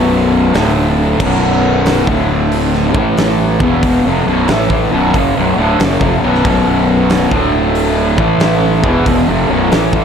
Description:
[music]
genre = stoner and doom metal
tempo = 92 BPM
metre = 4/4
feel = swing 66% on 8ths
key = B minor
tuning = A4 = 440 Hz
[part]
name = fuzz guitar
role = riff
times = 0.0-10.0 s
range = B1 to A3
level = -12 LUFS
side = equal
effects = distortion
[part]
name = fuzz fingered electric bass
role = bass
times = 0.0-10.0 s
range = B0 to A1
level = -18 LUFS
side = equal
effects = overdrive
[part]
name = big rock drum kit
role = drums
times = 0.5-10.0 s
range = crash cymbal, hi-hat, kick drum, snare drum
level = -18 LUFS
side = equal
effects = none
[sound]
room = light reverb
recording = none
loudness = -10 LUFS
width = side -7 dB against mid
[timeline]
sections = 0.0-10.0 A section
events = none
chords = 0.0 B5; 0.5 D5; 1.2 B5; 2.0 D5; 2.8 A5; 3.5 Bm; 7.3 D5; 8.1 A5; 8.7 B5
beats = 0.54 | 1.20 1.86 2.51 3.17 | 3.83 4.48 5.14 5.79 | 6.45 7.10 7.76 8.41 | 9.06 9.72

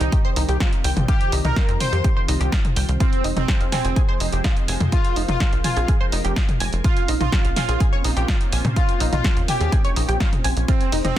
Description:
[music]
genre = melodic techno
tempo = 125 BPM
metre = 4/4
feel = straight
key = F minor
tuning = A4 = 441 Hz
[part]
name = analog synth brass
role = melody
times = 0.0-11.2 s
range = C4 to C5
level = -29 LUFS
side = right 1 dB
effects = chorus, sidechain pumping, tape echo
[part]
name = airy dreamy lead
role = second line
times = 0.0-11.2 s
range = C5 to C6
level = -32 LUFS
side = left 1 dB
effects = chorus, sidechain pumping, ping-pong delay
[part]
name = sweeping resonant pad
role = sustained chords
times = 0.0-11.2 s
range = Eb3 to C5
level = -31 LUFS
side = right 2 dB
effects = chorus, sidechain pumping
[part]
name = tight sequenced synth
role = arpeggios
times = 0.0-11.2 s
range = C4 to Ab6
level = -28 LUFS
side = equal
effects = chorus, phaser, cassette tape, sidechain pumping, ping-pong delay
[part]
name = tight sequencer bass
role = bass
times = 0.0-11.1 s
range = F1 to Bb2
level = -22 LUFS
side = equal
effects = sidechain pumping
[part]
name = punchy analog drum machine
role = drums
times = 0.0-11.2 s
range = hi-hat, ride cymbal, snare drum, toms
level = -26 LUFS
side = equal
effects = none
[part]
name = electronic kick drum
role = drums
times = 0.1-11.2 s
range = none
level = -20 LUFS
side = equal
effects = none
[sound]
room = little or no reverb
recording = dense, heavily limited modern master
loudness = -18 LUFS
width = side -12 dB against mid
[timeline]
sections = 0.0-11.2 A section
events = none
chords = 0.0 Cm; 3.0 Fm; 6.8 Bbmadd9; 10.7 Fm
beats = 0.12 0.60 | 1.08 1.56 2.04 2.52 | 3.00 3.48 3.96 4.44 | 4.92 5.40 5.88 6.36 | 6.84 7.32 7.80 8.28 | 8.76 9.24 9.72 10.20 | 10.68 11.16

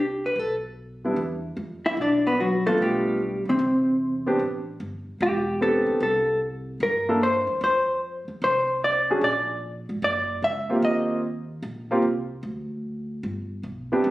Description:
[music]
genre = jazz, small-group swing and bop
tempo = 149 BPM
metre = 4/4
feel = swing 66% on 8ths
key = unclear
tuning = A4 = 440 Hz
[part]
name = vintage hollow-body jazz guitar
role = melody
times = 0.0-11.2 s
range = C3 to E5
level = -22 LUFS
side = equal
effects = none
[part]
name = upright bass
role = bass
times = 0.0-14.1 s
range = E1 to G2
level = -35 LUFS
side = equal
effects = none
[part]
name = warm grand piano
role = accompaniment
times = 1.0-14.1 s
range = C3 to A4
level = -23 LUFS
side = right 1 dB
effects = none
[sound]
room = moderate studio reverb, RT60 0.9 s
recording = recorded on a phone in the room, studio reverb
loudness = -22 LUFS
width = side -17 dB against mid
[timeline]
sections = 0.0-1.2 A section; 1.2-14.0 B section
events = none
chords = 0.4 Bm; 1.2 E5; 2.8 Bm7b5; 3.6 E5; 4.4 Am11; 6.0 C13; 7.6 F5; 9.2 Bbaug; 10.8 Eb69; 12.4 N.C.; 13.2 G6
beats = 0.37 0.77 | 1.18 1.58 1.98 2.38 | 2.79 3.19 3.59 3.99 | 4.40 4.80 5.20 5.60 | 6.00 6.41 6.81 7.21 | 7.61 8.01 8.42 8.82 | 9.22 9.62 10.03 10.43 | 10.83 11.23 11.63 12.04 | 12.44 12.84 13.24 13.65 | 14.05

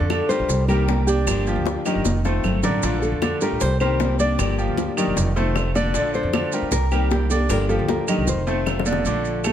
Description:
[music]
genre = latin, Cuban son and guajira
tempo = 154 BPM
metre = 4/4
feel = straight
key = unclear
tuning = A4 = 440 Hz
[part]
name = nylon-string guitar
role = melody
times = 0.0-9.5 s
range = G4 to D5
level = -26 LUFS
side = left 1 dB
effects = none
[part]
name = picked steel-string acoustic guitar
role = accompaniment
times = 0.0-9.5 s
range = D3 to G4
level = -28 LUFS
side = left 7 dB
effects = none
[part]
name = bright grand piano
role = arpeggios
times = 0.0-9.5 s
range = D3 to A5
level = -26 LUFS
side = right 3 dB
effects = none
[part]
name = upright bass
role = bass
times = 0.0-9.5 s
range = E1 to G2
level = -23 LUFS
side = right 1 dB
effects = none
[part]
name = bongos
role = percussion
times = 0.1-9.0 s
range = none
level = -30 LUFS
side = left 9 dB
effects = none
[part]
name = claves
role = percussion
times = 0.1-9.5 s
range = none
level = -33 LUFS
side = right 5 dB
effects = none
[part]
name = congas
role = percussion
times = 0.1-9.5 s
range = none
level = -28 LUFS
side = right 1 dB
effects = none
[part]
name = maracas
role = percussion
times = 0.1-9.5 s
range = none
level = -33 LUFS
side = right 8 dB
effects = none
[sound]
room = little or no reverb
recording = close, detailed microphones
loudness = -18 LUFS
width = side -10 dB against mid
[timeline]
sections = 0.0-9.1 A section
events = drum fill 1.7-2.8, 8.3-9.1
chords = 0.5 Cm7; 1.3 Gm7; 2.1 F7; 2.8 Bbmaj7; 3.6 Cm7; 4.4 Gm7; 5.2 F7; 5.9 Bbmaj7; 6.7 Cm7; 7.5 Gm7; 8.3 F7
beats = 0.11 0.50 0.89 | 1.28 1.67 2.06 2.44 | 2.83 3.22 3.61 4.00 | 4.39 4.78 5.17 5.56 | 5.95 6.33 6.72 7.11 | 7.50 7.89 8.28 8.67 | 9.06 9.45

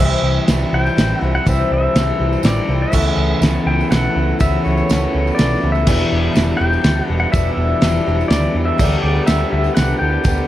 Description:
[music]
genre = folk rock and heartland rock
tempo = 123 BPM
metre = 3/4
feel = straight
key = unclear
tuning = A4 = 441 Hz
[part]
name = pedal steel guitar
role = melody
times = 0.0-10.5 s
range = C#5 to G5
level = -22 LUFS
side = left 3 dB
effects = plate reverb, tape echo
[part]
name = picked twelve-string acoustic guitar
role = accompaniment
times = 0.0-10.5 s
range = E2 to G4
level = -22 LUFS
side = left 3 dB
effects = none
[part]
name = warm grand piano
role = accompaniment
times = 0.0-10.5 s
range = G4 to C#6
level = -35 LUFS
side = right 10 dB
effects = none
[part]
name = tonewheel organ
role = sustained chords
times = 0.0-10.5 s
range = G4 to E6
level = -35 LUFS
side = right 1 dB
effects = none
[part]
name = electric guitar through a small old amp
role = riff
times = 0.0-10.5 s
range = E2 to G4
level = -23 LUFS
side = right 2 dB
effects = none
[part]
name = hollow-body short-scale picked electric bass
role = bass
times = 0.0-10.4 s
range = E1 to E2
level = -19 LUFS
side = equal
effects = none
[part]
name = tambourine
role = percussion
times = 0.0-10.4 s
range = none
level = -36 LUFS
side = right 12 dB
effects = none
[part]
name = cloth-damped thuddy drum kit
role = drums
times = 0.5-10.4 s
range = crash cymbal, kick drum, ride cymbal, snare drum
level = -19 LUFS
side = equal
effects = none
[sound]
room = light reverb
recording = dark, warm production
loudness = -14 LUFS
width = side -13 dB against mid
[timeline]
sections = 0.0-10.5 A section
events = none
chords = 0.0 C; 2.9 Aadd9; 5.9 Em7; 8.8 G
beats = 0.47 0.96 | 1.46 1.95 2.44 | 2.93 3.42 3.91 | 4.40 4.89 5.38 | 5.87 6.36 6.84 | 7.33 7.82 8.30 | 8.79 9.28 9.76 | 10.25

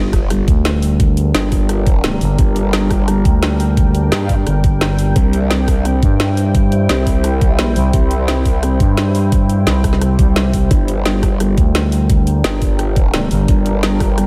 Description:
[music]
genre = dark technical drum and bass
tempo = 173 BPM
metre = 4/4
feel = straight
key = G dorian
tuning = A4 = 440 Hz
[part]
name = deep dark ambient pad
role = sustained chords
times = 0.8-14.3 s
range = G3 to G5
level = -24 LUFS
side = equal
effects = chorus, built-in reverb, sidechain pumping
[part]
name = growl bass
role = bass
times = 0.0-14.3 s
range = G1 to G2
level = -19 LUFS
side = equal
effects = chorus, overdrive
[part]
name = sub drop and swell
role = sound effects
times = 0.0-1.0, 10.2-10.7 s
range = none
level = -30 LUFS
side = equal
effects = none
[part]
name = drum and bass drum kit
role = drums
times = 0.1-14.2 s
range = hi-hat, rim click, snare drum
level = -24 LUFS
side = equal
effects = overdrive, studio reverb
[part]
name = electronic kick drum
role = drums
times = 0.1-14.1 s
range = none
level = -17 LUFS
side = equal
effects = overdrive, studio reverb
[part]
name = growling FM bass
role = bass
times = 0.5-13.5 s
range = G1 to G2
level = -17 LUFS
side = equal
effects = none
[sound]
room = light reverb, digital ambience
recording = none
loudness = -15 LUFS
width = mono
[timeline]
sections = 0.0-14.3 A section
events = impact 0.0-1.0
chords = 0.0 Gm; 5.2 C; 10.7 Gm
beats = 0.30 0.65 | 1.00 1.34 1.69 2.04 | 2.39 2.73 3.08 3.43 | 3.77 4.12 4.47 4.81 | 5.16 5.51 5.85 6.20 | 6.55 6.89 7.24 7.59 | 7.93 8.28 8.63 8.97 | 9.32 9.67 10.02 10.36 | 10.71 11.06 11.40 11.75 | 12.10 12.44 12.79 13.14 | 13.48 13.83 14.18

